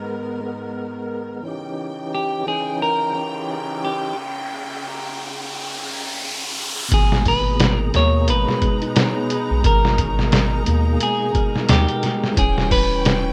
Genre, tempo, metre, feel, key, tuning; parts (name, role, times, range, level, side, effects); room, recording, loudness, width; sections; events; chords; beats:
trip hop; 88 BPM; 4/4; swing 59% on 16ths; G# harmonic minor; A4 = 440 Hz
tonewheel organ; accompaniment; 0.0-13.3 s; A#2 to G5; -29 LUFS; equal; overdrive, fast rotary speaker, tremolo, tape echo
clear studio string section; sustained chords; 0.0-13.3 s; G#2 to A#5; -33 LUFS; equal
riser; sound effects; 2.8-6.9 s; -32 LUFS; equal
clean electric guitar; melody; 2.1-13.3 s; G4 to C#5; -26 LUFS; equal; spring reverb, dub echo
soft dub sub bass; bass; 6.9-13.3 s; D#1 to D#2; -22 LUFS; equal
trip hop sampler-style drum kit; drums; 6.9-13.2 s; hi-hat, kick drum, snare drum; -22 LUFS; equal
felt-muted upright piano; arpeggios; 7.1-13.3 s; G3 to G#4; -31 LUFS; equal; tape echo
light reverb; rough home demo mix; -20 LUFS; mono
0.0-6.9 A section; 6.9-13.3 B section
riser 2.8-6.9
0.0 G#madd9; 1.5 D#7b9; 6.9 G#madd9; 12.4 D#7b9
0.10 0.78 | 1.46 2.14 2.83 3.51 | 4.19 4.87 5.55 6.23 | 6.92 7.60 8.28 8.96 | 9.64 10.32 11.01 11.69 | 12.37 13.05